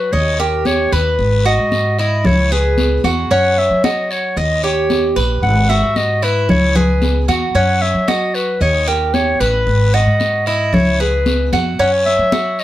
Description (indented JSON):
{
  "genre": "latin, Cuban son and guajira",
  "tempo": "113 BPM",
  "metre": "4/4",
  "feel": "straight",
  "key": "G# minor",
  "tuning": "A4 = 440 Hz",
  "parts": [
    { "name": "warm clarinet", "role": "melody", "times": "0.0-12.6 s", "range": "A#4 to F#5", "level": "-17 LUFS", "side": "left 2 dB", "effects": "none" },
    { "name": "Cuban tres", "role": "arpeggios", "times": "0.0-12.6 s", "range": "C#4 to D#5", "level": "-19 LUFS", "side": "right 2 dB", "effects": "analog delay" },
    { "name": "upright bass", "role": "bass", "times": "0.0-12.6 s", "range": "G#1 to F#3", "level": "-18 LUFS", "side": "equal", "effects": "none" },
    { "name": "congas", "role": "percussion", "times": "0.1-12.6 s", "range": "none", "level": "-19 LUFS", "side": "left 1 dB", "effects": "none" },
    { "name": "guiro", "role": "percussion", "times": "0.1-12.6 s", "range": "none", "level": "-27 LUFS", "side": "left 4 dB", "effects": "none" }
  ],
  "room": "light reverb",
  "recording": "none",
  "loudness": "-13 LUFS",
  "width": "side -14 dB against mid",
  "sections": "0.0-12.6 A section",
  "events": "none",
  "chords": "0.1 D#; 1.2 G#m7; 2.2 C#m7; 3.3 F#5; 4.4 D#7; 5.4 G#m7; 6.5 C#m7; 7.5 F#5; 8.6 D#; 9.7 G#m7; 10.7 C#m7; 11.8 F#5"
}